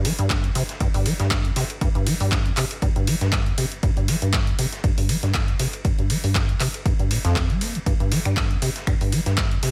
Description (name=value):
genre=acid house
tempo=119 BPM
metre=4/4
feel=swing 55% on 16ths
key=G minor pentatonic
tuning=A4 = 440 Hz
part: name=deep acid bass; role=riff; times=0.0-9.7 s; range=F2 to Bb3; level=-25 LUFS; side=equal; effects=tube saturation, analog chorus
part: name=dusty soul sampler-style drum kit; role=drums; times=0.0-9.7 s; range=hi-hat, ride cymbal, snare drum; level=-37 LUFS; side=equal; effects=overdrive, sidechain pumping on cymbals, high-pass filter on cymbals, high-pass filter on snare, sidechain pumping on hats, high-pass filter on hats
part: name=punchy analog drum machine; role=drums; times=0.0-9.7 s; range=finger snaps, handclaps, hi-hat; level=-30 LUFS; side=equal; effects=overdrive
part: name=electronic kick drum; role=drums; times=0.3-9.5 s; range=none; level=-26 LUFS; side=equal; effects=overdrive
room=little or no reverb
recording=none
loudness=-22 LUFS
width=mono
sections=0.0-9.7 A section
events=filter sweep on acid bass 0.0-9.7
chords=none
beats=0.30 0.81 1.31 | 1.81 2.32 2.82 3.33 | 3.83 4.33 4.84 5.34 | 5.85 6.35 6.86 7.36 | 7.86 8.37 8.87 9.38